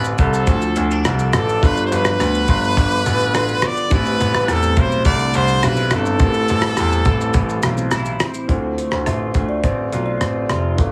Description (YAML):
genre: indie pop, bedroom pop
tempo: 105 BPM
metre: 4/4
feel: straight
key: unclear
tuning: A4 = 440 Hz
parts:
  - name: brilliant trumpet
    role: melody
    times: 0.0-7.9 s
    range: A4 to D5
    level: -23 LUFS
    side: equal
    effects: subtle chorus, slapback echo, plate reverb
  - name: dark upright piano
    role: accompaniment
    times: 0.0-10.9 s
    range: B3 to C5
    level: -32 LUFS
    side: equal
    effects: none
  - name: electric guitar at the edge of break-up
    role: accompaniment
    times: 0.0-10.9 s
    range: G2 to A4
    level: -27 LUFS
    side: equal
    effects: analog chorus, warbly pitch drift, plate reverb
  - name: clear baby grand piano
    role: bass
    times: 0.0-10.9 s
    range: F1 to E2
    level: -22 LUFS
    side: equal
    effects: none
  - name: cloth-damped thuddy drum kit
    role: drums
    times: 0.0-10.9 s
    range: hi-hat, kick drum, rim click, shaker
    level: -22 LUFS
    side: equal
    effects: none
  - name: kalimba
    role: second line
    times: 8.5-10.2 s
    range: C5 to E5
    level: -28 LUFS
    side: equal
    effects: analog chorus, slapback echo, plate reverb
room: light reverb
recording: heavily compressed radio sound, small room ambience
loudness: -18 LUFS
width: mono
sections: 0.0-8.5 A section; 8.5-10.9 B section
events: none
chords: 0.0 Dm7; 1.6 G7; 3.9 Am11; 6.2 Am7; 8.5 Dm7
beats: 0.47 1.05 | 1.62 2.19 2.77 3.34 | 3.91 4.48 5.05 5.63 | 6.20 6.77 7.34 7.92 | 8.49 9.06 9.64 10.21 | 10.78